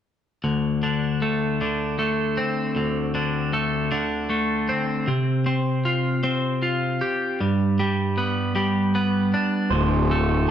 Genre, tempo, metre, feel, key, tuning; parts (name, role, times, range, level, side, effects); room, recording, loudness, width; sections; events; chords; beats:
rock; 52 BPM (dotted quarters); 6/8; straight; D minor; A4 = 440 Hz
twelve-string electric guitar; arpeggios; 0.4-10.5 s; D2 to G4; -21 LUFS; equal; spring reverb
electric guitar through a small old amp; arpeggios; 9.7-10.5 s; C5; -27 LUFS; right 5 dB; phaser
fuzz picked electric bass; bass; 9.7-10.5 s; D1; -21 LUFS; equal; overdrive
moderate large studio reverb, RT60 1.0 s; band playing live in one room; -21 LUFS; side -9 dB against mid
0.4-9.7 A section
0.4 D5; 5.1 Csus4; 7.4 G; 9.7 D5
| 0.44 1.60 | 2.76 3.92 | 5.08 6.24 | 7.39 8.55 | 9.71